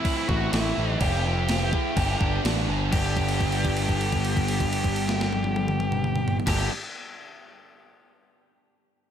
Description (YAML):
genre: rock, shoegaze and dream pop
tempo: 125 BPM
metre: 4/4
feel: straight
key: G major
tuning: A4 = 440 Hz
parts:
  - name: octave-fuzz lead guitar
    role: melody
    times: 0.0-6.7 s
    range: E4 to G4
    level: -31 LUFS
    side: equal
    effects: distortion, slapback echo
  - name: biting overdriven guitar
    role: riff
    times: 0.0-6.7 s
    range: G2 to F4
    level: -28 LUFS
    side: equal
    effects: wide subtle chorus
  - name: gated 80s digital drum machine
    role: drums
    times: 0.0-6.6 s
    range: crash cymbal, kick drum, snare drum, toms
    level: -28 LUFS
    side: equal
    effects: gated reverb, gated reverb snare, overdrive
  - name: growling picked electric bass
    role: bass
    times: 0.3-6.7 s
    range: F1 to A1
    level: -27 LUFS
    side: equal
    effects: overdrive
room: little or no reverb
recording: none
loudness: -22 LUFS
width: side -9 dB against mid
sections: 0.0-2.9 A section; 2.9-6.8 B section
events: held note 2.9-6.5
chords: 0.0 Am; 1.0 Fadd9; 2.0 G